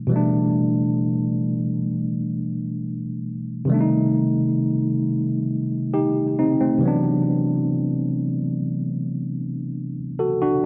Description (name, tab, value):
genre	R&B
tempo	67 BPM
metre	4/4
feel	straight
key	G major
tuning	A4 = 444 Hz
part	tine electric piano	solo	0.0-10.7 s	B2 to A4	-22 LUFS	equal	overdrive
room	moderate lush hall reverb, RT60 2.3 s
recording	none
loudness	-22 LUFS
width	mono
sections	0.0-10.7 A section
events	none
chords	0.0 G69; 3.7 Cm6; 6.8 D13